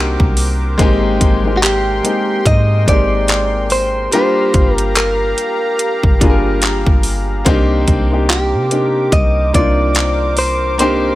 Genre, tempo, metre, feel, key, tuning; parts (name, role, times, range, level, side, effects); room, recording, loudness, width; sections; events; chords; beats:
contemporary R&B; 72 BPM; 4/4; swing 58% on 16ths; C minor; A4 = 440 Hz
warm grand piano; accompaniment; 0.0-11.2 s; G3 to Bb4; -18 LUFS; left 2 dB
warm analog pad; sustained chords; 0.0-11.2 s; G4 to D6; -24 LUFS; right 1 dB; chorus, sidechain pumping
soft 808-style bass; bass; 0.0-11.2 s; G1 to C3; -18 LUFS; equal
pop drum kit; drums; 0.2-11.0 s; handclaps, hi-hat, kick drum; -15 LUFS; equal
direct-recorded clean electric guitar; melody; 1.6-11.2 s; F#4 to Eb5; -17 LUFS; equal; tape echo
little or no reverb; -12 LUFS; side -16 dB against mid
0.0-11.2 A section
0.0 Cm9; 0.8 Abmaj9; 4.1 Gm7; 7.5 Cm9
| 0.79 1.63 2.46 3.29 | 4.13 4.96 5.79 6.63 | 7.46 8.29 9.13 9.96 | 10.79